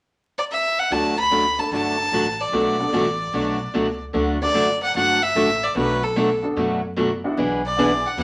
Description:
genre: country, western swing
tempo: 148 BPM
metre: 4/4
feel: swing 67% on 8ths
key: D major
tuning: A4 = 440 Hz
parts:
  - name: clear fiddle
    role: melody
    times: 0.4-8.2 s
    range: A4 to B5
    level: -24 LUFS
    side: equal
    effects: none
  - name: picked acoustic archtop guitar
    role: accompaniment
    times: 0.9-8.2 s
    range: B2 to G#4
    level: -24 LUFS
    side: equal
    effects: none
  - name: upright bass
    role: bass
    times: 0.9-8.2 s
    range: F#1 to F#2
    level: -35 LUFS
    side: equal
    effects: none
  - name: honky-tonk upright piano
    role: accompaniment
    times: 1.6-8.0 s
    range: A3 to A4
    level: -31 LUFS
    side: equal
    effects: none
room: wet studio reverb, RT60 0.6 s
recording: vinyl crackle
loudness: -21 LUFS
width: mono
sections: 0.9-4.1 A section; 4.1-8.2 B section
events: none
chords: 0.0 N.C.; 0.9 D; 2.5 Bm7; 4.1 D; 5.8 Bm7; 7.4 E7/B

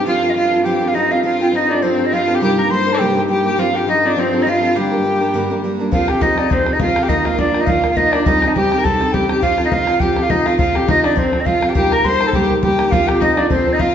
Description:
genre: celtic folk, Celtic reel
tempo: 206 BPM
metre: 4/4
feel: swing 55% on 8ths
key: unclear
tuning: A4 = 440 Hz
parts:
  - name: bright wooden flute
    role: melody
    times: 0.0-13.9 s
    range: C5 to C6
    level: -18 LUFS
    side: right 1 dB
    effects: none
  - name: clear viola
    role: second line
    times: 0.0-13.9 s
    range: C4 to C5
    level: -19 LUFS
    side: left 3 dB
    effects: none
  - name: picked steel-string acoustic guitar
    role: accompaniment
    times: 0.0-13.9 s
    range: G2 to Bb4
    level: -19 LUFS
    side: right 2 dB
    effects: none
  - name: accordion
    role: drone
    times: 0.0-6.0 s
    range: G2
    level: -27 LUFS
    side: left 2 dB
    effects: none
  - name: bodhran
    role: percussion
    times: 5.9-13.9 s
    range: none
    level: -20 LUFS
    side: left 1 dB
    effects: none
room: wet large studio reverb, RT60 1.5 s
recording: band playing live in one room, nothing above 7.8 kHz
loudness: -13 LUFS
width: side -9 dB against mid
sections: 0.0-5.9 A section; 5.9-13.9 A section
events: none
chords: 0.1 F; 2.4 Cm7; 3.6 F; 4.8 Gm; 5.9 Fadd9; 7.1 Ebsus2; 8.3 Cm; 9.4 F; 11.8 Cm7; 12.9 F

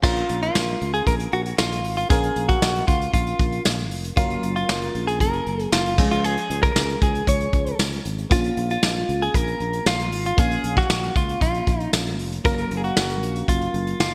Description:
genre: 1980s-style pop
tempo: 116 BPM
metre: 4/4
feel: straight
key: Bb minor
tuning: A4 = 444 Hz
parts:
  - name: direct-recorded clean electric guitar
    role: melody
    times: 0.0-14.1 s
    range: F4 to Db5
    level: -27 LUFS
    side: equal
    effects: subtle chorus, digital delay
  - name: FM electric piano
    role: accompaniment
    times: 0.0-14.1 s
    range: F3 to F5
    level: -32 LUFS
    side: equal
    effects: chorus
  - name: sustaining fretless electric bass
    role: bass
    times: 0.0-14.1 s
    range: F1 to Db2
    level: -29 LUFS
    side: equal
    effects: none
  - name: vintage brush drum kit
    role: drums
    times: 0.0-14.1 s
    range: crash cymbal, hi-hat, kick drum, snare drum, tambourine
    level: -25 LUFS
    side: equal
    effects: gated reverb
room: moderate lush hall reverb, RT60 1.7 s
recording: bright 1980s-style digital production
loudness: -22 LUFS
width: mono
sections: 0.0-14.1 A section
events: none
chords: 0.0 Bbm; 4.2 Gbmaj7; 6.0 Db; 8.3 Bbm; 12.4 Gbmaj7

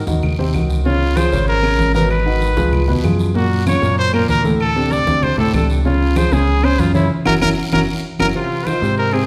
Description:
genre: latin, salsa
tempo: 192 BPM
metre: 4/4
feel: straight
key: unclear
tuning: A4 = 440 Hz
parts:
  - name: bright trumpet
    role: melody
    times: 0.0-9.3 s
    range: E4 to D5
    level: -22 LUFS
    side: equal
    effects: none
  - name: warm grand piano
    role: accompaniment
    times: 0.1-9.3 s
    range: A2 to Db5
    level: -22 LUFS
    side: equal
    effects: none
  - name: fingered electric bass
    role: bass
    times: 0.1-9.3 s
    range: Gb1 to Ab2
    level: -21 LUFS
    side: equal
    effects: none
  - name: congas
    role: percussion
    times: 0.1-9.3 s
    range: none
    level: -25 LUFS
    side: equal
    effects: none
  - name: guiro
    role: percussion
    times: 0.1-9.3 s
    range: none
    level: -37 LUFS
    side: equal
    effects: none
  - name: claves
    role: percussion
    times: 0.2-9.3 s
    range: none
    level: -35 LUFS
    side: equal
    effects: none
room: wet recital hall reverb, RT60 1.5 s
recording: recorded in a church or concert hall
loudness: -16 LUFS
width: mono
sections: 0.0-8.4 A section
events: band accent 7.1-8.4; drum fill 7.6-8.4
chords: 0.0 Ab7 (rootless); 0.9 Db6; 2.1 Abm7; 2.7 Db9; 3.4 Gb; 4.6 D5; 5.9 Db; 7.1 Gb7; 8.4 Fm7

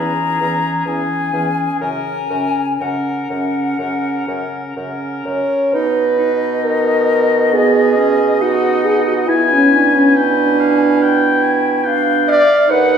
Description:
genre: classical, slow romantic movement for wind quintet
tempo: 60-72 BPM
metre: 4/4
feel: rubato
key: B major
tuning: A4 = 439 Hz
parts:
  - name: mellow silver concert flute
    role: melody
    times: 0.0-13.0 s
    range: D#5 to A#5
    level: -21 LUFS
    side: left 6 dB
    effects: none
  - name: clear oboe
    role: second line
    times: 0.0-13.0 s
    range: G#4 to G#5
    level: -21 LUFS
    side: left 4 dB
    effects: none
  - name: bright clarinet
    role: accompaniment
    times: 0.0-13.0 s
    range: B3 to E4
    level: -22 LUFS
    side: right 5 dB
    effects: none
  - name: mellow French horn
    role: accompaniment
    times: 0.0-13.0 s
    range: C#3 to D5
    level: -16 LUFS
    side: right 1 dB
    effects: none
  - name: mellow bassoon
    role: bass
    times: 0.0-13.0 s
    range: D#2 to B2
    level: -21 LUFS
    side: right 5 dB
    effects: none
room: wet recital hall reverb, RT60 1.6 s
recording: heard from further back in the room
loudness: -13 LUFS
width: side -7 dB against mid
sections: 0.0-5.7 A section; 5.7-13.0 B section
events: none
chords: 0.0 C#m/E; 1.8 F#; 5.7 B; 9.3 Bdim7

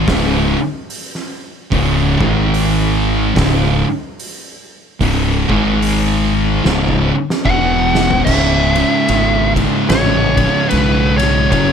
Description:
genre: stoner and doom metal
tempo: 73 BPM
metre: 4/4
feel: swing 60% on 8ths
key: C# minor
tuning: A4 = 444 Hz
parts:
  - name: fuzz guitar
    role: riff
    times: 0.0-11.7 s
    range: C#2 to G#3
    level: -21 LUFS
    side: right 1 dB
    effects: distortion
  - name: thick fuzz guitar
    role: riff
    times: 0.0-11.7 s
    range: C#2 to G#3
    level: -19 LUFS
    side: left 11 dB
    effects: distortion
  - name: thick fuzz guitar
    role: riff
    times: 0.0-11.7 s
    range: C#2 to G#3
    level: -18 LUFS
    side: right 10 dB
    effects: distortion
  - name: growling fingered electric bass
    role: bass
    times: 0.0-11.7 s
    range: C#1 to B1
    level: -18 LUFS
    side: equal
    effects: overdrive
  - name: oversized low-tuned drum kit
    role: drums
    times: 0.1-11.7 s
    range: crash cymbal, hi-hat, kick drum, ride cymbal, snare drum, toms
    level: -20 LUFS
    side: equal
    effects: none
  - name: fuzz lead guitar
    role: melody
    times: 7.5-11.7 s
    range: B4 to F#5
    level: -17 LUFS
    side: left 1 dB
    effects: distortion
room: little or no reverb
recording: none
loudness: -12 LUFS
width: side -7 dB against mid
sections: 0.0-8.3 A section; 8.3-11.7 B section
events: drum fill 6.6-8.3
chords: 0.1 C#5; 2.1 G#5; 3.4 C#5; 5.4 G#5; 6.6 C#5; 7.5 E5; 8.3 C#m

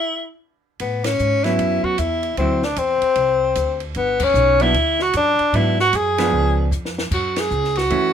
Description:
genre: jazz, small-group swing and bop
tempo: 152 BPM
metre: 4/4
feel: swing 64% on 8ths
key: A major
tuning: A4 = 440 Hz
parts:
  - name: clear tenor saxophone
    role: melody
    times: 0.0-8.1 s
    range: B3 to G#4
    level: -18 LUFS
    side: left 1 dB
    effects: none
  - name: upright bass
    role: bass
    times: 0.8-8.1 s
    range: G1 to A2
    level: -23 LUFS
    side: equal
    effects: none
  - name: compact cocktail drum kit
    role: drums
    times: 0.8-8.0 s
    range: crash cymbal, hi-hat, kick drum, ride cymbal, snare drum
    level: -29 LUFS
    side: equal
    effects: none
  - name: vintage hollow-body jazz guitar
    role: accompaniment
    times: 1.4-8.1 s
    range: D3 to E4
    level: -22 LUFS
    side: right 3 dB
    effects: none
room: light reverb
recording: minimal, uncompressed stereo recording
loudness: -16 LUFS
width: side -8 dB against mid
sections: 0.8-8.1 A section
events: break 0.0-0.8; band accent 1.0, 4.2, 7.3; drum fill 6.7-7.1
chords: 0.0 N.C.; 0.8 A69; 2.4 D9; 4.0 Gmaj7; 5.5 G#m7b5; 6.3 C#7b9; 7.1 F#m7

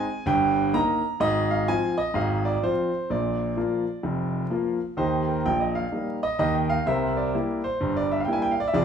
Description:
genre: jazz, stride piano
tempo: 127 BPM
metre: 4/4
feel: swing 63% on 8ths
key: Eb major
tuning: A4 = 441 Hz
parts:
  - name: warm concert grand piano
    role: solo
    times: 0.0-8.8 s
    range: F1 to Bb5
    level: -22 LUFS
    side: right 1 dB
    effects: none
room: wet large studio reverb, RT60 0.9 s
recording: band playing live in one room, vinyl crackle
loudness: -22 LUFS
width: side -7 dB against mid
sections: 0.0-5.0 A section; 5.0-8.8 B section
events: none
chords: 0.3 Eb/G; 1.2 Fm/Ab; 3.1 Bb; 5.0 Eb; 6.9 C7

